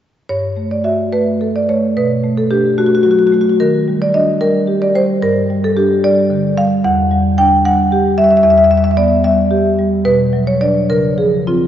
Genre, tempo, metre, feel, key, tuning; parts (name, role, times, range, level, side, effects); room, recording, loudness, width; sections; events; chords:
classical, contemporary piece for solo marimba; 74 BPM (dotted quarters); 6/8; rubato; G lydian; A4 = 440 Hz
marimba with medium mallets; solo; 0.3-11.7 s; E2 to G5; -11 LUFS; equal
wet church reverb, RT60 3.4 s; heard from further back in the room, nothing above 7.7 kHz; -11 LUFS; side -10 dB against mid
0.3-11.7 A section
0.3 Gsus2; 2.0 Bm7; 3.6 Ebmaj7; 5.2 G5; 6.8 Em9; 8.4 G6/E; 10.1 Bm; 10.9 C#maj7